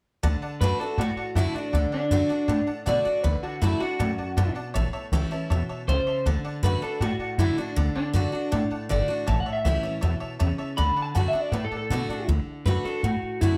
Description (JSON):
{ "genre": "rockabilly", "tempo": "159 BPM", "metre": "4/4", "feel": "straight", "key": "D major", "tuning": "A4 = 439 Hz", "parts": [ { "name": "picked steel-string acoustic guitar", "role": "accompaniment", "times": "0.2-13.6 s", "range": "F#2 to F#4", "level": "-34 LUFS", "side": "equal", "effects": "none" }, { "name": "tack piano", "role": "accompaniment", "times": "0.2-12.2 s", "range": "C#5 to B5", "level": "-39 LUFS", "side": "equal", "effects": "none" }, { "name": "upright bass", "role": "bass", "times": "0.2-13.5 s", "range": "G1 to B2", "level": "-27 LUFS", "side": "equal", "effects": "none" }, { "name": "electric guitar through a small old amp", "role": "melody", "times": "0.6-13.6 s", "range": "D4 to B5", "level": "-30 LUFS", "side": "equal", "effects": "lush chorus, tape echo" } ], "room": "light reverb, studio reverb", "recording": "none", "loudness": "-26 LUFS", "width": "mono", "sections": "0.2-12.3 A section; 12.3-13.6 A section", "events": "none", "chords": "0.2 D; 4.8 A; 6.3 D; 9.3 A; 10.8 D" }